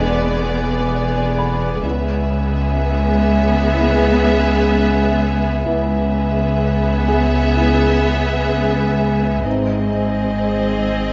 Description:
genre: cinematic, suspense film score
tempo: 63 BPM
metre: 4/4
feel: straight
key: unclear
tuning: A4 = 440 Hz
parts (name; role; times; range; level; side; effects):
- warm symphonic violin section; melody; 0.0-11.1 s; D5 to E5; -28 LUFS; equal; none
- rich symphonic violin section; second line; 0.0-11.1 s; G#4; -27 LUFS; equal; none
- bright symphonic viola section; accompaniment; 0.0-11.1 s; B3 to B#3; -25 LUFS; equal; none
- glass harmonica; sustained chords; 0.0-11.1 s; B4 to G#5; -27 LUFS; equal; none
- warm French horn section; sustained chords; 0.0-9.8 s; G#3 to E4; -28 LUFS; equal; none
- bright symphonic double bass section; bass; 0.0-11.1 s; E1 to C#2; -26 LUFS; equal; none
- rich symphonic cello section; bass; 0.0-11.1 s; C#2 to G#2; -23 LUFS; equal; none
- pure sine sub bass; drone; 0.0-11.1 s; E1 to C#2; -25 LUFS; equal; none
- dark baby grand piano; texture; 1.4-11.1 s; G#4 to B5; -30 LUFS; equal; none
room: moderate scoring stage reverb, RT60 2.1 s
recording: nothing above 7.7 kHz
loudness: -17 LUFS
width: mono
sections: 0.0-11.1 A section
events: none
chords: 0.0 E7; 1.8 C#m7; 9.5 G#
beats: 0.89 | 1.84 2.79 3.75 4.70 | 5.65 6.60 7.55 8.51 | 9.46 10.41

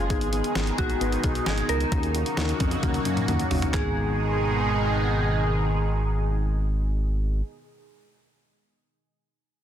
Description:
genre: synth-pop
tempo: 132 BPM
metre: 4/4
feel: straight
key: G# minor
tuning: A4 = 440 Hz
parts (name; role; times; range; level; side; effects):
- muted felt-like synth keys; accompaniment; 0.0-7.4 s; B3 to B4; -33 LUFS; left 4 dB; chorus
- lush unison pad; sustained chords; 0.0-7.4 s; B2 to G#4; -28 LUFS; right 1 dB; chorus, phaser
- smooth synth bass; bass; 0.0-7.4 s; F#1 to F#2; -26 LUFS; equal; none
- clean 12-bit digital drum machine; drums; 0.1-3.8 s; handclaps, hi-hat, kick drum, snare drum, toms; -28 LUFS; equal; none
- glassy synth bell; melody; 0.8-7.4 s; F#4 to A#4; -32 LUFS; equal; chorus, phaser, ping-pong delay
room: light reverb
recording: dense, heavily limited modern master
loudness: -22 LUFS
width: side -10 dB against mid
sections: 0.0-3.7 A section; 3.7-7.4 B section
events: drum fill 2.8-3.7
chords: 0.1 G#m; 1.9 D#m7; 3.7 G#m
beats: | 0.10 0.56 1.01 1.47 | 1.92 2.37 2.83 3.28 | 3.74 4.19 4.65 5.10 | 5.56 6.01 6.46 6.92

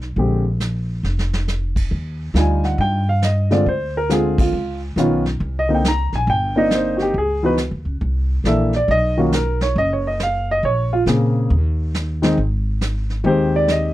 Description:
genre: jazz piano trio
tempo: 138 BPM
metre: 4/4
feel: swing 65% on 8ths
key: Eb major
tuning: A4 = 440 Hz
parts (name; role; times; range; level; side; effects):
- upright bass; bass; 0.0-13.9 s; F1 to Bb2; -20 LUFS; equal; none
- vintage brush drum kit; drums; 0.0-13.9 s; brushed snare drum, crash cymbal, hi-hat, kick drum, snare drum; -24 LUFS; right 1 dB; none
- dark grand piano; melody; 0.2-13.9 s; Db3 to Bb5; -18 LUFS; equal; none
room: light reverb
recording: dry, close 1970s-style studio recording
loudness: -16 LUFS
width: side -15 dB against mid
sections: 0.0-1.9 A section; 1.9-13.9 B section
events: drum fill 1.0-1.5; band accent 4.3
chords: 0.2 Bb5; 1.9 Ebmaj9; 3.7 Dm7b5; 4.5 Db9; 5.4 Cm9; 7.1 Db7sus2; 8.0 C13; 8.9 Bmaj9#11; 10.6 Bbm9; 11.5 N.C.; 12.4 Abmaj7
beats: | 0.16 0.60 1.04 1.47 | 1.91 2.35 2.78 3.22 | 3.66 4.09 4.53 4.97 | 5.40 5.84 6.28 6.71 | 7.15 7.58 8.02 8.46 | 8.89 9.33 9.76 10.20 | 10.63 11.07 11.51 11.94 | 12.38 12.81 13.25 13.69

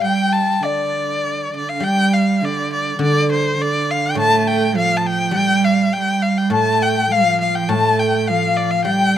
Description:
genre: chinese traditional, Chinese chamber ensemble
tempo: 102 BPM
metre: 2/4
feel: straight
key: unclear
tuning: A4 = 440 Hz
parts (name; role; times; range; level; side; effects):
- bright erhu; melody; 0.0-9.2 s; C5 to A5; -19 LUFS; left 1 dB; none
- large dizi; second line; 0.0-1.5, 6.5-9.2 s; D5 to A5; -21 LUFS; left 8 dB; none
- warm cello; second line; 0.0-9.2 s; D3 to A3; -20 LUFS; right 5 dB; none
- guzheng; accompaniment; 0.0-9.2 s; A2 to G3; -23 LUFS; left 1 dB; none
room: moderate recital hall reverb, RT60 1.7 s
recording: close, detailed microphones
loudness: -15 LUFS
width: side -10 dB against mid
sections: 0.0-1.8 A section; 1.8-9.2 B section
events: none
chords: none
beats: 0.04 | 0.63 1.23 | 1.82 2.42 | 3.00 3.58 | 4.17 4.75 | 5.34 5.93 | 6.53 7.12 | 7.71 8.29 | 8.87

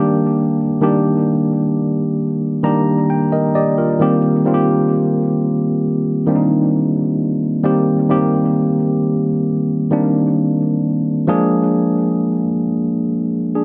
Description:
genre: R&B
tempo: 66 BPM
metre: 4/4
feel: straight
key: C minor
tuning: A4 = 440 Hz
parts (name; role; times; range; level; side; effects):
- tine electric piano; solo; 0.0-13.6 s; Eb3 to Bb5; -16 LUFS; equal; tape echo
room: light reverb, digital ambience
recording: none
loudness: -16 LUFS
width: mono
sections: 0.0-11.3 A section; 11.3-13.6 B section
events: tine electric piano fill 2.2-4.0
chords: 0.0 Ebmaj7; 4.0 Cm7; 11.3 Bb7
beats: | 0.37 1.28 2.19 3.10 | 4.00 4.91 5.82 6.73 | 7.64 8.55 9.46 10.37 | 11.28 12.19 13.10

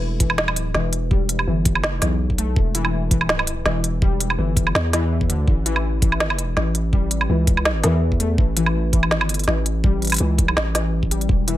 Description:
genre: half-time drum and bass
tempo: 165 BPM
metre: 4/4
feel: swing 55% on 16ths, half-time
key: unclear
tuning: A4 = 439 Hz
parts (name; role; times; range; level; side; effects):
- long sustained 808-style bass; bass; 0.0-11.6 s; E1 to E2; -22 LUFS; equal; none
- warbly dusty pluck; arpeggios; 0.2-11.6 s; E2 to A3; -25 LUFS; left 3 dB; lush chorus, tape echo
- electronic kick drum; drums; 0.2-11.4 s; none; -19 LUFS; equal; none
- organic electronic drum kit; drums; 0.2-11.6 s; hi-hat, snare drum, woodblock; -22 LUFS; right 1 dB; none
room: little or no reverb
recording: none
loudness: -17 LUFS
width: side -14 dB against mid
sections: 0.0-11.6 A section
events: none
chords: 0.0 Em; 5.5 A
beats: 0.02 0.38 0.75 | 1.11 1.48 1.84 2.20 | 2.57 2.93 3.29 3.66 | 4.02 4.38 4.75 5.11 | 5.47 5.84 6.20 6.57 | 6.93 7.29 7.66 8.02 | 8.38 8.75 9.11 9.47 | 9.84 10.20 10.57 10.93 | 11.29

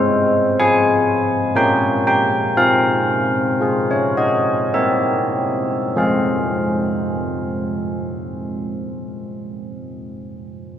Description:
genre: classical, tune for church bells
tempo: 48-63 BPM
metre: 3/4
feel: straight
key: F minor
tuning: A4 = 440 Hz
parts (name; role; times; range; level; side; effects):
- carillon bells; solo; 0.0-10.1 s; F3 to Ab5; -16 LUFS; equal; none
room: wet cathedral reverb, RT60 6.0 s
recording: none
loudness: -16 LUFS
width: side -10 dB against mid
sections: 0.0-6.0 A section; 6.0-9.7 B section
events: slowing down 0.0-6.0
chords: 0.0 Fm/Ab; 1.6 Gm7b5/Bb; 2.6 Fm/C; 4.7 C7; 6.0 Fm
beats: 0.60 1.56 | 2.55 3.60 4.74 | 5.97 7.21 8.45

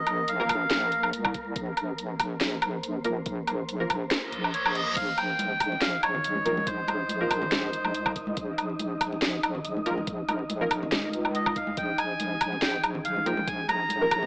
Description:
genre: deep dubstep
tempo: 141 BPM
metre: 4/4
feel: swing 54% on 16ths, half-time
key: Bb dorian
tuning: A4 = 440 Hz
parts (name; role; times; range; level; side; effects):
- melodica; melody; 0.0-1.1, 4.5-8.1, 11.4-14.3 s; C5 to Bb5; -29 LUFS; equal; dub echo
- deep soft wobble bass; bass; 0.0-14.3 s; Bb1 to Db2; -33 LUFS; equal; chorus
- wind-like tuned noise texture; texture; 0.0-14.3 s; Bb3 to Eb5; -36 LUFS; equal; built-in reverb
- garage drum kit; drums; 0.1-14.2 s; crash cymbal, handclaps, hi-hat, snare drum, woodblock; -28 LUFS; equal; none
- filtered dub chord stab; stabs; 0.4-14.1 s; F3 to Bb4; -31 LUFS; equal; ensemble chorus, dub echo
- electronic kick drum; drums; 0.5-14.2 s; none; -38 LUFS; equal; none
- reverse cymbal; sound effects; 4.2-5.0 s; none; -31 LUFS; equal; none
- congas; percussion; 5.4-14.3 s; none; -38 LUFS; equal; dub echo
room: light reverb, digital ambience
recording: vinyl crackle, AM radio sound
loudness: -25 LUFS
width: side -29 dB against mid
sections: 0.0-14.3 A section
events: reverse cymbal 4.2-5.0; kick drops out 4.5-5.0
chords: 0.0 Bb5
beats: 0.28 0.71 1.13 | 1.56 1.99 2.41 2.84 | 3.26 3.69 4.11 4.54 | 4.96 5.39 5.82 6.24 | 6.67 7.09 7.52 7.94 | 8.37 8.79 9.22 9.64 | 10.07 10.50 10.92 11.35 | 11.77 12.20 12.62 13.05 | 13.47 13.90

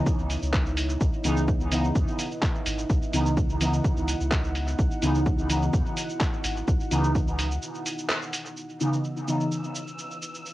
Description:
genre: dub techno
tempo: 127 BPM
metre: 4/4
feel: straight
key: C# minor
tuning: A4 = 440 Hz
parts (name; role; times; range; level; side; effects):
- deep dark ambient pad; sustained chords; 0.0-10.5 s; B3 to F#5; -35 LUFS; right 1 dB; chorus, built-in reverb, sidechain pumping, cassette tape
- soft dub sub bass; bass; 0.0-7.6 s; G#1 to E2; -29 LUFS; equal; sidechain pumping
- electronic kick drum; drums; 0.1-7.2 s; none; -25 LUFS; equal; cassette tape
- lo-fi sampler-style drum kit; drums; 0.1-10.5 s; cabasa, handclaps, hi-hat; -32 LUFS; equal; cassette tape
- resonant sweep polysynth; stabs; 1.2-9.4 s; C#3 to D#4; -28 LUFS; equal; chorus, phaser, sidechain pumping, cassette tape, dub echo
- wind-like tuned noise texture; texture; 9.1-10.5 s; E3 to E6; -40 LUFS; equal; built-in reverb, sidechain pumping, cassette tape
room: moderate small room reverb, RT60 0.5 s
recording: home recording on cassette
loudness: -23 LUFS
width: side -16 dB against mid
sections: 0.0-8.6 A section; 8.6-10.5 B section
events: break 7.6-8.6; band accent 8.1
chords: 0.0 C#m9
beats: 0.06 0.54 | 1.01 1.48 1.95 2.43 | 2.90 3.37 3.84 4.32 | 4.79 5.26 5.73 6.21 | 6.68 7.15 7.62 8.10 | 8.57 9.04 9.51 9.98 | 10.46

